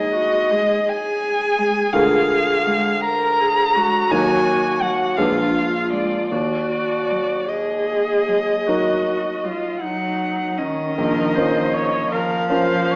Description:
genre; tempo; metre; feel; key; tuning
classical, slow romantic movement for piano quartet; 48-58 BPM (dotted quarters); 12/8; rubato; Eb minor; A4 = 440 Hz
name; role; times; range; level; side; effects
rich violin; melody; 0.0-13.0 s; D5 to Bb5; -20 LUFS; equal; none
clear grand piano; accompaniment; 0.0-13.0 s; Bb1 to Cb5; -22 LUFS; equal; none
rich viola; accompaniment; 0.0-13.0 s; Db4 to Db5; -22 LUFS; equal; none
rich cello; second line; 0.5-13.0 s; Eb3 to Ab3; -27 LUFS; equal; none
room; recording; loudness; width
wet recital hall reverb, RT60 1.3 s; AM radio sound; -17 LUFS; side -33 dB against mid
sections
0.0-11.0 A section; 11.0-13.0 B section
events
none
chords
0.0 Ab5/Eb; 1.9 Bb7/D; 4.1 Ebm; 5.2 Bb7b9; 6.3 Ebm; 11.0 Bbm

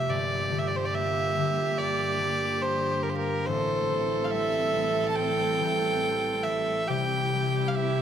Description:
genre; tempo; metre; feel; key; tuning
celtic folk, Celtic slow air; 70 BPM; 4/4; rubato; G dorian; A4 = 440 Hz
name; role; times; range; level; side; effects
warm fiddle; melody; 0.0-8.0 s; Bb4 to A5; -28 LUFS; right 1 dB; tape echo
clear viola; second line; 0.0-8.0 s; G4 to A4; -30 LUFS; right 5 dB; none
concert harp; accompaniment; 0.0-8.0 s; F1 to D4; -31 LUFS; left 6 dB; none
clear symphonic string section; sustained chords; 0.0-8.0 s; G2 to E4; -36 LUFS; left 2 dB; none
room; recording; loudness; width
light reverb; close, detailed microphones; -24 LUFS; side -9 dB against mid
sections
0.0-8.0 A section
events
none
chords
0.1 Gm7; 3.5 Am7; 6.9 C

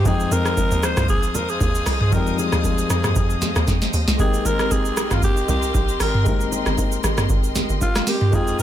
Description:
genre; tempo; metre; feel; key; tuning
amapiano; 116 BPM; 4/4; swing 55% on 16ths; unclear; A4 = 440 Hz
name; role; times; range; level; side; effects
breathy alto saxophone; melody; 0.0-8.6 s; F4 to C5; -26 LUFS; equal; tape echo
warm concert grand piano; accompaniment; 0.0-8.6 s; F3 to G5; -27 LUFS; left 6 dB; none
dark studio string section; sustained chords; 0.0-8.6 s; Bb4 to Eb6; -30 LUFS; left 2 dB; sidechain pumping
tight log drum bass; bass; 0.1-8.6 s; G1 to F2; -24 LUFS; equal; none
booming analog drum machine; drums; 0.1-8.6 s; hi-hat, kick drum, rim click, shaker, snare drum, toms; -21 LUFS; equal; overdrive
congas and bongos; percussion; 0.1-8.6 s; none; -31 LUFS; right 2 dB; none
buzzing marimba with medium mallets; stabs; 4.2-8.6 s; C4 to Bb4; -29 LUFS; right 4 dB; tape echo
room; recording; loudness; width
small room reverb; none; -17 LUFS; side -11 dB against mid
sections
0.0-8.6 A section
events
drum fill 3.7-4.2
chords
0.1 Fm7; 4.2 Abmaj9

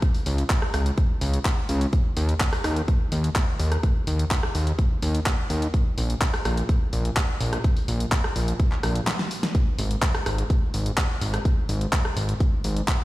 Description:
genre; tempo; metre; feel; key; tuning
progressive house; 126 BPM; 4/4; straight; unclear; A4 = 440 Hz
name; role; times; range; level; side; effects
deep house drum kit; drums; 0.0-13.0 s; handclaps, hi-hat, rim click, snare drum; -28 LUFS; equal; none
electronic kick drum; drums; 0.0-13.0 s; none; -22 LUFS; equal; none
fat analog bass; bass; 0.3-12.8 s; Ab1 to Eb2; -23 LUFS; equal; sidechain pumping
room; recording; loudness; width
little or no reverb; played on a big sound system in a bare room, stone room reverb; -21 LUFS; side -17 dB against mid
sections
0.0-13.0 A section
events
break 9.1-9.5; drum fill 9.1-9.5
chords
none

